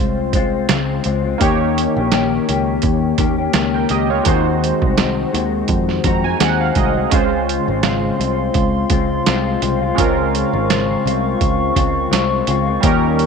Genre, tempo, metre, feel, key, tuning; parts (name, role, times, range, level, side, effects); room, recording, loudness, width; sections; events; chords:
indie pop, bedroom pop; 84 BPM; 4/4; swing 55% on 16ths; Db major; A4 = 440 Hz
mellow electric guitar; accompaniment; 0.0-13.3 s; Db3 to G4; -19 LUFS; left 12 dB; analog chorus, vibrato effect
warm analog keys; accompaniment; 0.0-13.3 s; G3 to Bb5; -22 LUFS; right 13 dB; chorus, cassette tape
picked electric bass; bass; 0.0-13.3 s; Ab1 to F2; -22 LUFS; right 1 dB
lo-fi sampler-style drum kit; drums; 0.3-13.3 s; hi-hat, kick drum, snare drum; -19 LUFS; right 4 dB
warbly tape-like pad; sustained chords; 7.7-13.3 s; F4 to Db6; -22 LUFS; left 2 dB; chorus, built-in reverb
moderate spring reverb, RT60 1.7 s, digital ambience; 1960s-style stereo with parts hard left and right; -14 LUFS; side -5 dB against mid
0.0-13.3 A section
synth keys fill 5.7-7.1
0.0 Dbmaj7; 1.4 Eb7; 4.3 Ab7; 7.1 Dbmaj7